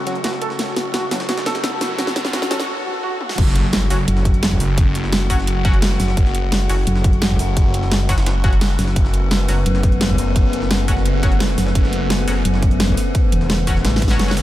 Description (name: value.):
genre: dark technical drum and bass.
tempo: 172 BPM.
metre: 4/4.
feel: straight.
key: F# minor.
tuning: A4 = 440 Hz.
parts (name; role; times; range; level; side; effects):
metallic inharmonic drone; sustained chords; 0.0-14.4 s; C#3 to F#4; -25 LUFS; left 1 dB; chorus, built-in reverb, sidechain pumping.
phased detuned saw bass; bass; 0.0-14.4 s; F#1 to F#2; -20 LUFS; equal; phaser, high-pass filter.
riser, swell and impact; sound effects; 0.1-4.8 s; none; -28 LUFS; equal; none.
band-passed chord stab; stabs; 0.1-14.3 s; F#3 to F#4; -30 LUFS; left 1 dB; chorus, analog delay.
dubstep drum kit; drums; 0.1-14.4 s; crash cymbal, hi-hat, snare drum, toms; -23 LUFS; right 1 dB; studio reverb.
jungle sampler-style drum kit; drums; 0.1-14.4 s; hi-hat, snare drum; -32 LUFS; equal; overdrive, high-pass filter on hats, studio reverb, high-pass filter on snare.
felt-muted upright piano; arpeggios; 0.2-3.1 s; F#4 to A4; -27 LUFS; right 1 dB; analog chorus, sidechain pumping, analog delay.
electronic kick drum; drums; 3.4-14.1 s; none; -18 LUFS; equal; studio reverb.
metallic wobble bass; bass; 4.1-14.2 s; E1 to A1; -18 LUFS; equal; distortion, chorus, tube saturation.
room: light reverb.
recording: high-pass filter.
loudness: -15 LUFS.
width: side -14 dB against mid.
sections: 0.0-3.4 A section; 3.4-14.4 B section.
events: build-up 0.0-3.4; drum fill 0.0-2.7, 3.2, 13.8-14.4; filter sweep on synth stab 0.0-3.4; break 2.7-3.4; swell 2.7-3.4; drop 3.4-14.4; impact 3.4-4.8.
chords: 0.0 F#m.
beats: 0.24 | 0.59 0.94 1.29 1.64 | 1.99 2.33 2.68 3.03 | 3.38 3.73 4.08 4.43 | 4.78 5.12 5.47 5.82 | 6.17 6.52 6.87 7.22 | 7.57 7.92 8.26 8.61 | 8.96 9.31 9.66 10.01 | 10.36 10.71 11.05 11.40 | 11.75 12.10 12.45 12.80 | 13.15 13.50 13.85 14.20.